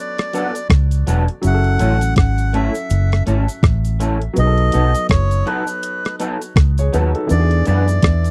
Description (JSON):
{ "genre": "lovers rock reggae", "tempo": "82 BPM", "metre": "4/4", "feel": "swing 59% on 16ths", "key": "unclear", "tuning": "A4 = 441 Hz", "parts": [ { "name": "melodica", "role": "melody", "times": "0.0-8.3 s", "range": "B4 to F#5", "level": "-26 LUFS", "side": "equal", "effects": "tape echo" }, { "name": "clear grand piano", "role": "accompaniment", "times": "0.0-8.3 s", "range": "E3 to C#5", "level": "-27 LUFS", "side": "equal", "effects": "none" }, { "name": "crisp 8-bit digital drum machine", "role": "drums", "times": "0.2-8.3 s", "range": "hi-hat, kick drum, rim click", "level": "-17 LUFS", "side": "equal", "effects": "none" }, { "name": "electric guitar through a small old amp", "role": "stabs", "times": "0.3-7.8 s", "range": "F#3 to B4", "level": "-24 LUFS", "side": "equal", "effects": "ensemble chorus" }, { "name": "cabasa", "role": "percussion", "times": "0.3-8.3 s", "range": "none", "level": "-39 LUFS", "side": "equal", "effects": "none" }, { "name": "vintage muted fingered electric bass", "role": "bass", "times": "0.7-8.3 s", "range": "E1 to F#2", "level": "-18 LUFS", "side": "equal", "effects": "none" } ], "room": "little or no reverb", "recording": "dry, close 1970s-style studio recording", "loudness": "-17 LUFS", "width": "mono", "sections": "0.0-8.3 A section", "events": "none", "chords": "0.0 Bm7; 1.4 F#m7; 4.4 B7; 7.3 E7" }